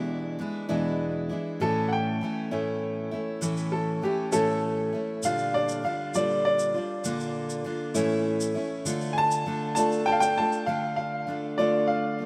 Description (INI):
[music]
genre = acoustic folk duo or small band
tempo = 66 BPM (dotted quarters)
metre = 6/8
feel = straight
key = D harmonic minor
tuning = A4 = 440 Hz
[part]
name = picked steel-string acoustic guitar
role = accompaniment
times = 0.0-12.3 s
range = E2 to F4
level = -30 LUFS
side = equal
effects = none
[part]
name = bright upright piano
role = melody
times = 1.6-12.3 s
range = G4 to A5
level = -29 LUFS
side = equal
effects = none
[part]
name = tube shaker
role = percussion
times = 3.4-10.6 s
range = none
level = -42 LUFS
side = equal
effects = none
[sound]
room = wet lush hall reverb, RT60 2.7 s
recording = rough home demo mix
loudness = -27 LUFS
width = mono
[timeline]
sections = 0.0-10.7 A section; 10.7-12.3 B section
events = upright piano solo 0.0-10.7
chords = 0.0 E7; 1.6 A; 5.2 Gm7/Bb; 7.0 Bb; 8.0 A; 8.9 Dm